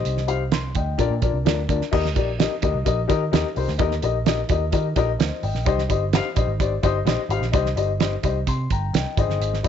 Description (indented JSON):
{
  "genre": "uptempo 1960s-style soul",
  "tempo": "128 BPM",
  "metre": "4/4",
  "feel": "straight",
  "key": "Eb major",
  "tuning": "A4 = 439 Hz",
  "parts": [
    { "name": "dark upright piano", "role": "accompaniment", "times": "0.0-9.7 s", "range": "D4 to C6", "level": "-24 LUFS", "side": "left 10 dB", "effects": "none" },
    { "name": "vintage muted picked electric bass", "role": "bass", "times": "0.0-9.7 s", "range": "G1 to Eb3", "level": "-25 LUFS", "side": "right 1 dB", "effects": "none" },
    { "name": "cloth-damped thuddy drum kit", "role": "drums", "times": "0.1-9.7 s", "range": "crash cymbal, hi-hat, kick drum, snare drum", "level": "-23 LUFS", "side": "right 5 dB", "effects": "none" }
  ],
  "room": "small room reverb",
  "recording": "1960s-style stereo, nothing above 7.8 kHz",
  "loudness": "-20 LUFS",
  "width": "side -8 dB against mid",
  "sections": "0.0-1.9 A section; 1.9-9.7 B section",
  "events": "none",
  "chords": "0.0 Cm; 1.0 Bb; 1.9 Eb; 5.7 Cm; 9.2 Ab"
}